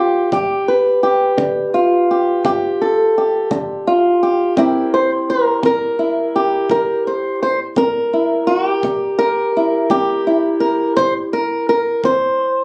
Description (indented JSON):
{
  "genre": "acoustic country blues, solo or duo",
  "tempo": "56 BPM (dotted quarters)",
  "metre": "12/8",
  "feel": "straight",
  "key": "unclear",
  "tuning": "A4 = 442 Hz",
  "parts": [
    { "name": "fingerpicked swing-style acoustic guitar", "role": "melody", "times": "0.0-12.6 s", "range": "G2 to C5", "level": "-16 LUFS", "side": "equal", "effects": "none" },
    { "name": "kick drum", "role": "drums", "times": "0.3-12.2 s", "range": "none", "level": "-35 LUFS", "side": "equal", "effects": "none" }
  ],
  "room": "light reverb",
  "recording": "recorded on a phone in the room, club reverb, compression",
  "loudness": "-16 LUFS",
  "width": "mono",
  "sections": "0.0-12.6 A section",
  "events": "none",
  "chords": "0.0 G7; 4.6 C7"
}